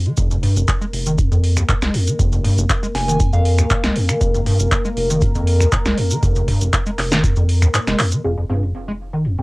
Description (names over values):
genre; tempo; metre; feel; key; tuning
acid house; 119 BPM; 4/4; straight; F minor; A4 = 439 Hz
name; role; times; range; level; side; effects
deep acid bass; riff; 0.0-9.4 s; Eb2 to Ab3; -19 LUFS; equal; overdrive, analog chorus, sidechain pumping, cassette tape
electro analog drum machine; drums; 0.1-9.4 s; finger snaps, handclaps, hi-hat, snare drum; -22 LUFS; equal; low-pass filter on hats, cassette tape, low-pass filter on snare
dark analog pad; sustained chords; 0.2-9.4 s; Bb3 to Eb5; -25 LUFS; left 1 dB; chorus, sidechain pumping, cassette tape
round analog bass; bass; 0.2-9.4 s; F1 to F2; -20 LUFS; equal; sidechain pumping
electronic kick drum; drums; 0.2-7.3 s; none; -19 LUFS; equal; cassette tape
maracas; percussion; 0.2-8.2 s; none; -29 LUFS; right 1 dB; none
soft synth bell; melody; 3.0-3.8 s; F5 to Ab5; -28 LUFS; equal; chorus, vintage 12-bit sampler grit, analog delay
deep mellow chord stab; stabs; 8.2-9.4 s; C4 to G5; -25 LUFS; equal; chorus, phaser, cassette tape, analog delay
room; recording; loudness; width
moderate booth ambience, RT60 0.2 s; home recording on cassette; -15 LUFS; side -24 dB against mid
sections
0.0-8.2 A section; 8.2-9.4 B section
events
break 7.7-8.2; drum fill 8.0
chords
0.0 N.C.; 8.2 Fm